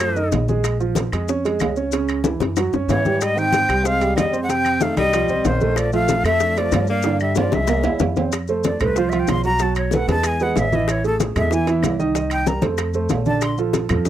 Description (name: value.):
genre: Afro-Cuban jazz.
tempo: 188 BPM.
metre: 4/4.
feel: straight.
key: unclear.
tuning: A4 = 440 Hz.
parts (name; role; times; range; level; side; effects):
breathy bright jazz flute; melody; 0.0-0.3, 2.9-13.6 s; A4 to C6; -22 LUFS; equal; none.
clear tenor saxophone; second line; 0.0-0.3, 2.9-8.0 s; Eb3 to C4; -26 LUFS; left 5 dB; none.
warm concert grand piano; accompaniment; 0.0-14.1 s; C3 to Gb5; -22 LUFS; right 5 dB; none.
upright bass; bass; 0.0-14.1 s; A1 to Ab2; -24 LUFS; equal; none.
claves; percussion; 0.0-14.1 s; none; -34 LUFS; left 2 dB; none.
congas; percussion; 0.0-14.1 s; none; -25 LUFS; left 3 dB; none.
maracas; percussion; 0.0-14.1 s; none; -35 LUFS; left 8 dB; none.
timbales; percussion; 0.0-14.1 s; none; -28 LUFS; right 7 dB; none.
bongos; percussion; 0.2-14.1 s; none; -26 LUFS; left 10 dB; none.
room: light reverb.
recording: dry, close 1970s-style studio recording.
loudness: -17 LUFS.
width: side -11 dB against mid.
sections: 0.0-8.3 A section; 8.3-14.1 B section.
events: drum fill 2.4-3.2, 7.0-8.3; flute solo 8.3-14.1.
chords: 0.0 B9 (rootless); 0.6 Bbm7; 1.9 Dbm; 2.6 Gbsus2; 3.2 Abmaj7; 4.5 F9; 5.8 Bbmaj7; 7.0 G5; 7.7 C7alt; 8.3 F; 9.6 B5; 10.2 E; 10.9 A5; 12.2 Cm7; 12.8 F; 13.4 Bbmaj7.